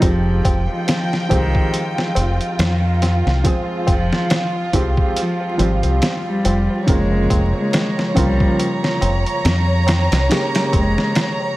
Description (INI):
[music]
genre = trip hop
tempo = 70 BPM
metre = 4/4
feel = swing 56% on 16ths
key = F minor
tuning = A4 = 441 Hz
[part]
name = warm cello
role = melody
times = 0.0-11.3 s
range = Eb3 to Ab3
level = -24 LUFS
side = equal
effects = dub echo
[part]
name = felt-muted upright piano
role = accompaniment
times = 0.0-11.6 s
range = Db3 to Ab4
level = -24 LUFS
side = right 1 dB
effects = tremolo, tape echo
[part]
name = warm studio string section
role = sustained chords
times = 0.0-11.6 s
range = F3 to Bb5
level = -24 LUFS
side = right 1 dB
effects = vintage 12-bit sampler grit
[part]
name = deep dub fingered electric bass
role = bass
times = 0.0-10.9 s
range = F1 to F2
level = -18 LUFS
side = equal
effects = tube saturation
[part]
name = trip hop sampler-style drum kit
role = drums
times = 0.0-11.4 s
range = hi-hat, kick drum, snare drum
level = -20 LUFS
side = equal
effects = studio reverb
[part]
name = tabla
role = percussion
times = 0.0-11.6 s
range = none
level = -30 LUFS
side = left 1 dB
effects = none
[sound]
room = studio ambience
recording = vinyl crackle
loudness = -15 LUFS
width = side -17 dB against mid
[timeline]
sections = 0.0-11.6 A section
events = none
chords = 0.0 Fmadd9; 6.9 Bbm7/F